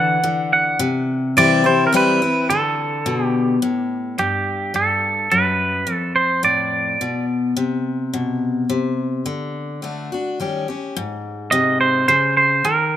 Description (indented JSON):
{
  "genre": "country",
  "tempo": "106 BPM",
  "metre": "3/4",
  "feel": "straight",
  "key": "G major",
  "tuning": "A4 = 440 Hz",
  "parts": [
    { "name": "twangy electric guitar", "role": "melody", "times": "0.0-7.2, 11.5-13.0 s", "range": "G4 to F#5", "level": "-17 LUFS", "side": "right 3 dB", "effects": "spring reverb, tape echo" },
    { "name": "picked steel-string acoustic guitar", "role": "accompaniment", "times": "0.0-13.0 s", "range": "F2 to G4", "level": "-20 LUFS", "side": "left 3 dB", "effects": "none" }
  ],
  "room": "light reverb, small room ambience",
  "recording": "rough home demo mix",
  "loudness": "-16 LUFS",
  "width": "side -11 dB against mid",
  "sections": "0.0-4.2 A section; 4.2-11.0 B section; 11.0-13.0 A section",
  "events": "none",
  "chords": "0.0 D; 0.8 C; 2.5 D5; 4.2 G; 5.9 F; 7.6 N.C.; 9.3 D; 10.4 Eb7; 11.0 Ab"
}